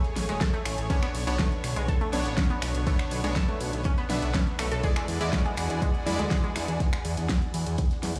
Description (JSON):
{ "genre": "progressive house", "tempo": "122 BPM", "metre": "4/4", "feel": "straight", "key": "unclear", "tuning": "A4 = 440 Hz", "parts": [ { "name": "lush unison pad", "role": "sustained chords", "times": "0.0-8.2 s", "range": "D3 to C#5", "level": "-39 LUFS", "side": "equal", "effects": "chorus, sidechain pumping" }, { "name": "supersaw stab", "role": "stabs", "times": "0.0-6.8 s", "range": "G#3 to E5", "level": "-36 LUFS", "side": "equal", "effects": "cassette tape, sidechain pumping, dub echo" }, { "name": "damped 70s drum kit", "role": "drums", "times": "0.0-8.2 s", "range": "hi-hat, snare drum", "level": "-50 LUFS", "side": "equal", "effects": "none" }, { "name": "pop drum kit", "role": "drums", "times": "0.0-8.2 s", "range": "finger snaps, hi-hat, ride cymbal, snare drum", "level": "-36 LUFS", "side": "equal", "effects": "overdrive, sidechain pumping on hats, sidechain pumping on cymbals" }, { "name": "fat analog bass", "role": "bass", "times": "0.2-8.2 s", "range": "E1 to E2", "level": "-32 LUFS", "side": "equal", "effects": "tube saturation, sidechain pumping" }, { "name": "glassy wavetable pluck", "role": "arpeggios", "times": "0.3-6.5 s", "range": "G#3 to A4", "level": "-38 LUFS", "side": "equal", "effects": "chorus, sidechain pumping, dub echo" }, { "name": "electronic kick drum", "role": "drums", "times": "0.4-7.9 s", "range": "none", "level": "-29 LUFS", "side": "equal", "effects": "none" } ], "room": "light reverb", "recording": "studio reverb", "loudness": "-27 LUFS", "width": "mono", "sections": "0.0-8.2 A section", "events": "none", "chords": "0.0 Amaj7; 0.9 Bmadd9; 4.8 E7" }